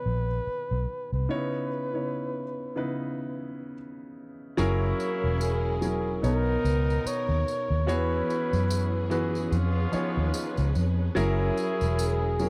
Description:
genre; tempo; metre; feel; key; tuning
lush 1970s-style soul; 73 BPM; 4/4; swing 58% on 16ths; unclear; A4 = 441 Hz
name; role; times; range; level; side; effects
mellow flugelhorn; melody; 0.0-12.5 s; G#4 to C#5; -34 LUFS; equal; none
warm grand piano; accompaniment; 0.0-12.5 s; B2 to D#5; -33 LUFS; equal; none
vintage muted fingered electric bass; bass; 0.1-12.5 s; E1 to F#2; -29 LUFS; equal; none
warm studio string section; sustained chords; 4.6-12.5 s; E3 to B4; -40 LUFS; equal; none
warm horn section; stabs; 4.6-12.4 s; D#3 to G#4; -39 LUFS; equal; none
tambourine; percussion; 4.6-12.5 s; none; -44 LUFS; equal; none
room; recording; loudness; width
little or no reverb; dry, close 1970s-style studio recording; -28 LUFS; mono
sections
0.0-4.6 A section; 4.6-12.5 B section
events
break 1.3-4.6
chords
0.0 Bmaj7; 1.3 C#m7; 4.6 F#9; 6.2 Bmaj7; 7.9 E6; 9.5 C#7; 11.2 F#9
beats
0.47 | 1.30 2.12 2.94 3.77 | 4.59 5.41 6.23 7.05 | 7.88 8.70 9.52 10.34 | 11.16 11.98

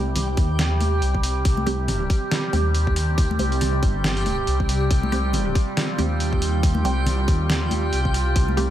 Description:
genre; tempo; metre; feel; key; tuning
deep dubstep; 139 BPM; 4/4; swing 58% on 16ths, half-time; C minor; A4 = 440 Hz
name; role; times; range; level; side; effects
overtone-sweeping drone; sustained chords; 0.0-8.7 s; C3 to G4; -27 LUFS; right 2 dB; chorus, built-in reverb
filtered dub chord stab; stabs; 0.0-8.7 s; G3 to G4; -33 LUFS; right 3 dB; none
dark detuned saw bass; bass; 0.0-8.7 s; G1 to Eb2; -22 LUFS; equal; none
backwards swelling texture; texture; 0.0-8.7 s; G4; -31 LUFS; right 2 dB; built-in reverb
trip hop sampler-style drum kit; drums; 0.2-8.7 s; hi-hat, snare drum; -28 LUFS; equal; studio reverb
congas; percussion; 0.2-8.7 s; none; -30 LUFS; left 3 dB; dub echo
electronic kick drum; drums; 0.4-8.5 s; none; -20 LUFS; equal; overdrive, studio reverb
room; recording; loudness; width
little or no reverb; none; -19 LUFS; side -12 dB against mid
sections
0.0-8.7 A section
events
none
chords
0.0 C5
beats
0.16 0.59 1.02 | 1.45 1.88 2.31 2.75 | 3.18 3.61 4.04 4.47 | 4.91 5.34 5.77 6.20 | 6.63 7.06 7.50 7.93 | 8.36

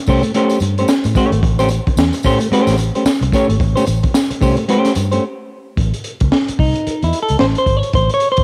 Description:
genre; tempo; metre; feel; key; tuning
funk; 110 BPM; 4/4; swing 60% on 16ths; unclear; A4 = 439 Hz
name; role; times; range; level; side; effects
semi-hollow electric guitar; accompaniment; 0.0-8.4 s; A3 to C#5; -19 LUFS; equal; spring reverb
vintage muted fingered electric bass; bass; 0.1-8.4 s; G1 to A2; -20 LUFS; equal; none
crunchy breakbeat drum kit; drums; 0.1-8.4 s; hi-hat, kick drum, snare drum; -20 LUFS; equal; none
tambourine; percussion; 0.1-5.1 s; none; -35 LUFS; equal; none
room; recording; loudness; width
light reverb; home recording on cassette; -15 LUFS; mono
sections
0.0-5.8 A section; 5.8-8.4 B section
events
break 5.2-5.8; clean electric guitar solo 5.8-8.4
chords
0.0 A7#9; 5.8 A(#9)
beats
0.34 0.89 | 1.43 1.97 2.51 3.05 | 3.60 4.14 4.68 5.22 | 5.77 6.31 6.86 7.40 | 7.94

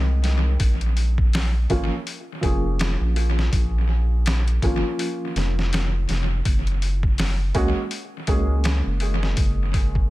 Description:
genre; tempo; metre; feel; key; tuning
trip hop; 82 BPM; 4/4; swing 58% on 16ths; unclear; A4 = 440 Hz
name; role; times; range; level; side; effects
dark upright piano; accompaniment; 0.0-10.1 s; F3 to Bb4; -28 LUFS; right 1 dB; harmonic tremolo, low-pass filter, tape echo
round analog bass; bass; 0.0-10.1 s; F1 to Db2; -21 LUFS; equal; none
trip hop sampler-style drum kit; drums; 0.2-10.1 s; hi-hat, kick drum, snare drum; -24 LUFS; equal; small room ambience, analog delay
room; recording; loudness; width
little or no reverb; echo-heavy mix; -19 LUFS; side -18 dB against mid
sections
0.0-10.1 A section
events
filter sweep on upright piano 0.0-10.1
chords
0.0 Fm7 (rootless); 0.6 Bbm; 6.5 Gbadd9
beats
| 0.60 1.33 2.06 2.79 | 3.52 4.25 4.99 5.72 | 6.45 7.18 7.91 8.65 | 9.38

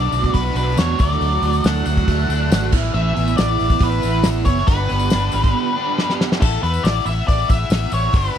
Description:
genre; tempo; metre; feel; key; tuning
indie rock; 139 BPM; 4/4; straight; unclear; A4 = 441 Hz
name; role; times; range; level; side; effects
octave-fuzz lead guitar; melody; 0.0-8.4 s; A4 to F#5; -22 LUFS; left 2 dB; distortion
crunchy overdriven guitar; riff; 0.0-6.4 s; E3 to G4; -23 LUFS; right 13 dB; ensemble chorus
overdriven electric guitar; riff; 0.0-8.4 s; E3 to G4; -27 LUFS; left 7 dB; none
fingered electric bass; bass; 0.0-8.4 s; F#1 to E2; -20 LUFS; equal; none
loose indie drum kit; drums; 0.1-8.4 s; crash cymbal, hi-hat, kick drum, snare drum; -19 LUFS; equal; none
tambourine; percussion; 0.1-8.3 s; none; -39 LUFS; left 20 dB; none
room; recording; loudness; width
little or no reverb; dry, close 1970s-style studio recording; -15 LUFS; side -9 dB against mid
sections
0.0-6.4 A section; 6.4-8.4 B section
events
break 5.6-6.4; drum fill 6.0-6.4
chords
0.0 Bm; 1.0 D; 2.7 Asus2; 4.7 G; 6.4 Asus2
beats
0.36 0.79 | 1.23 1.66 2.09 2.53 | 2.96 3.39 3.83 4.26 | 4.69 5.12 5.55 5.99 | 6.42 6.85 7.28 7.72 | 8.15

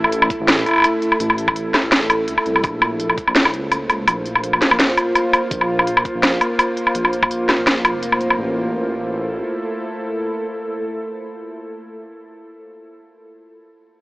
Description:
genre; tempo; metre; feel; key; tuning
half-time drum and bass; 167 BPM; 4/4; swing 55% on 16ths, half-time; A phrygian; A4 = 443 Hz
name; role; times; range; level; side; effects
bowed-like drone; sustained chords; 0.0-11.8 s; A3 to C5; -22 LUFS; equal; built-in reverb, vintage 12-bit sampler grit, sidechain pumping
dark detuned saw bass; bass; 0.0-9.4 s; F1 to D2; -27 LUFS; equal; none
drum and bass drum kit; drums; 0.0-8.4 s; hi-hat, snare drum, woodblock; -16 LUFS; equal; none
electronic kick drum; drums; 0.3-3.3, 5.5-7.3 s; none; -28 LUFS; equal; none
room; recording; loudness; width
moderate huge ambient reverb, RT60 7.0 s; AM radio sound; -16 LUFS; side -22 dB against mid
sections
0.0-8.4 A section; 8.4-11.3 B section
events
filter sweep on detuned saw bass 0.0-8.4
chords
0.0 A5; 2.6 Bb5; 8.4 A5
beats
0.12 0.48 0.84 | 1.20 1.56 1.92 2.28 | 2.64 3.00 3.35 3.71 | 4.07 4.43 4.79 5.15 | 5.51 5.87 6.23 6.59 | 6.95 7.31 7.67 8.03 | 8.38 8.74 9.10 9.46 | 9.82 10.18 10.54 10.90

